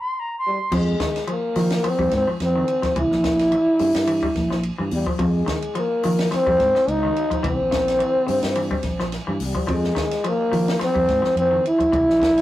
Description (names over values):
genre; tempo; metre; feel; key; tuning
afrobeat; 107 BPM; 4/4; swing 54% on 16ths; F minor; A4 = 439 Hz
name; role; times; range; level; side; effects
mellow silver concert flute; melody; 0.0-0.7 s; Bb5 to C6; -24 LUFS; right 1 dB; slapback echo
trombone with bucket mute; melody; 0.5-12.4 s; G3 to E4; -20 LUFS; equal; none
semi-hollow electric guitar; arpeggios; 0.7-12.4 s; Db3 to G3; -28 LUFS; left 2 dB; none
fingered electric bass; bass; 0.7-12.4 s; Bb1 to F3; -24 LUFS; right 1 dB; none
compact cocktail drum kit; drums; 0.7-12.4 s; crash cymbal, hi-hat, kick drum, ride cymbal, snare drum; -29 LUFS; equal; none
room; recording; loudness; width
wet small room reverb, RT60 0.5 s; rough rehearsal-room recording, warm saturation; -18 LUFS; side -14 dB against mid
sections
0.7-12.4 A section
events
stop 0.0-0.7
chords
0.0 N.C.; 0.7 Fm7; 3.0 C7b9 (rootless); 5.2 Fm7; 7.4 C7b9; 9.7 Fm7